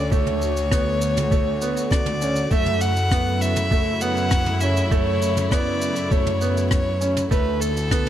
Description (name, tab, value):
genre	piano and strings electronica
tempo	100 BPM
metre	4/4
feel	straight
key	F# minor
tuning	A4 = 440 Hz
part	dark violin	melody	0.0-8.1 s	A4 to F#5	-25 LUFS	left 1 dB	digital delay
part	warm chamber string section	sustained chords	0.0-8.1 s	C#3 to F#4	-29 LUFS	left 1 dB	sidechain pumping
part	clear studio double bass section	bass	0.0-8.1 s	D2 to F#2	-25 LUFS	equal	tube saturation, sidechain pumping
part	clear upright piano	riff	0.1-8.1 s	A3 to C#4	-26 LUFS	right 3 dB	digital delay
part	electronic kick drum	drums	0.1-8.0 s	none	-21 LUFS	equal	none
part	jazz brush drum kit	drums	0.1-8.1 s	rim click, shaker, toms	-30 LUFS	equal	none
room	light reverb, small room reverb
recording	none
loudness	-19 LUFS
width	side -11 dB against mid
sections	0.0-8.1 A section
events	none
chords	0.0 Dmaj7; 2.5 F#m7; 7.3 D